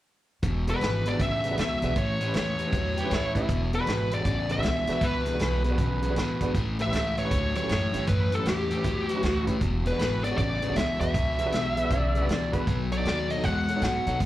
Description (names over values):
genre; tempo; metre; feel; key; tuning
electric blues shuffle; 157 BPM; 4/4; swing 64% on 8ths; E mixolydian; A4 = 441 Hz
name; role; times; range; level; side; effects
overdriven semi-hollow guitar; riff; 0.4-14.3 s; E2 to G#3; -30 LUFS; left 3 dB; slapback echo
upright bass; bass; 0.4-14.3 s; E1 to B2; -30 LUFS; equal; none
warm soul drum kit; drums; 0.4-14.3 s; hi-hat, kick drum, snare drum; -31 LUFS; equal; none
smooth overdriven lead guitar; melody; 0.7-14.2 s; G4 to F#5; -30 LUFS; equal; none
warm upright piano; accompaniment; 0.7-14.1 s; C#4 to C#5; -36 LUFS; right 4 dB; none
overdriven harmonica; second line; 3.0-6.7, 11.5-12.8 s; E4 to E5; -35 LUFS; right 1 dB; slapback echo
room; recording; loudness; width
small room ambience; live gig heard through the venue's PA, club reverb; -24 LUFS; side -14 dB against mid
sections
0.4-14.3 A section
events
none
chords
0.4 E7; 2.0 A7; 3.5 E7; 6.5 A7; 9.6 E7; 12.7 B7